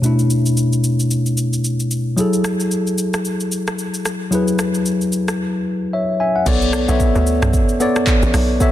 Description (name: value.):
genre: amapiano.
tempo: 112 BPM.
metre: 4/4.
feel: swing 58% on 16ths.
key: B dorian.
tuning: A4 = 439 Hz.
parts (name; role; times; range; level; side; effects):
tine electric piano; accompaniment; 0.0-8.7 s; B2 to G#5; -17 LUFS; left 1 dB; none.
afro-pop drum kit; drums; 0.0-8.7 s; crash cymbal, handclaps, hi-hat, kick drum, rim click, shaker, toms; -22 LUFS; equal; none.
tight log drum bass; bass; 6.5-8.6 s; A1 to D2; -18 LUFS; right 1 dB; none.
room: light reverb.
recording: dense, heavily limited modern master.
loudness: -15 LUFS.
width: side -12 dB against mid.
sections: 0.0-6.5 A section; 6.5-8.7 B section.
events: drop 6.5-8.7.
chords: 0.0 Bm9; 2.2 F#m9; 6.5 Bm9.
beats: | 0.04 0.57 1.11 1.64 | 2.18 2.71 3.25 3.79 | 4.32 4.86 5.39 5.93 | 6.46 7.00 7.54 8.07 | 8.61.